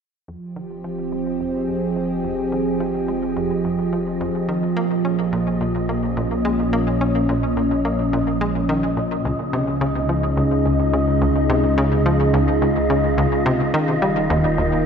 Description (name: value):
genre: ambient, sequencer-driven space music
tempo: 107 BPM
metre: 4/4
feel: straight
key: F minor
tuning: A4 = 441 Hz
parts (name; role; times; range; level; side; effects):
- lush unison pad; sustained chords; 0.3-14.9 s; Bb2 to G5; -20 LUFS; right 1 dB; chorus
- tight sequencer bass; riff; 0.3-14.7 s; Db2 to Db4; -24 LUFS; left 1 dB; vintage 12-bit sampler grit, tape echo
- warm sub bass; bass; 0.3-14.9 s; Eb1 to Db2; -28 LUFS; left 1 dB; none
- wind-like tuned noise texture; texture; 1.1-14.9 s; Eb5; -29 LUFS; right 1 dB; built-in reverb
room: wet scoring stage reverb, RT60 1.9 s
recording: none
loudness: -18 LUFS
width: side -6 dB against mid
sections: 0.3-14.9 A section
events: fade-in on analog synth bass 0.3-14.9; fade-in on sub bass 0.3-14.9; fade-in on synth texture 0.3-14.9; filter sweep on analog synth pad 0.3-14.9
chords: 0.3 Fm; 4.8 Bbm; 9.3 Db; 13.7 Eb